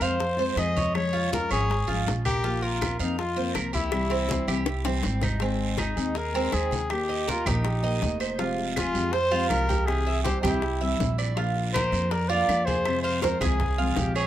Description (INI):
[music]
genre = latin, Cuban son and guajira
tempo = 161 BPM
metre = 4/4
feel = straight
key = F minor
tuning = A4 = 440 Hz
[part]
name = warm trumpet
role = melody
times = 0.0-14.1 s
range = Eb4 to Eb5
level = -29 LUFS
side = left 2 dB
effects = none
[part]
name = nylon-string guitar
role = accompaniment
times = 0.0-14.3 s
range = C3 to Ab4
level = -32 LUFS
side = left 3 dB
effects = none
[part]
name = Cuban tres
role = arpeggios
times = 0.0-14.3 s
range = C4 to F5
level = -30 LUFS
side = right 5 dB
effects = none
[part]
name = upright bass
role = bass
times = 0.0-14.3 s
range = F1 to F2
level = -29 LUFS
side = right 1 dB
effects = none
[part]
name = congas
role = percussion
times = 0.0-14.3 s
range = none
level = -33 LUFS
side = left 1 dB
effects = none
[part]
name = guiro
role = percussion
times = 0.0-14.3 s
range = none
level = -39 LUFS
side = right 8 dB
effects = none
[part]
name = bongos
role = percussion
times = 0.2-14.3 s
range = none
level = -34 LUFS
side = left 6 dB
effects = none
[part]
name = claves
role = percussion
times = 0.6-14.3 s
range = none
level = -38 LUFS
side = right 4 dB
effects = none
[part]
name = warm trumpet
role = second line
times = 13.8-14.3 s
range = F4 to Ab4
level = -32 LUFS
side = right 1 dB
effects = none
[sound]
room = moderate spring reverb, RT60 1.6 s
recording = none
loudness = -23 LUFS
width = side -12 dB against mid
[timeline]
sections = 0.0-5.4 A section; 5.4-14.3 B section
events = drum fill 3.9-5.4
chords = 0.0 Fm; 0.9 Db; 2.4 Bbsus2; 3.9 C; 5.4 Ab; 6.9 Eb; 8.4 Fmadd9; 9.9 C; 11.4 Bb; 12.9 Fm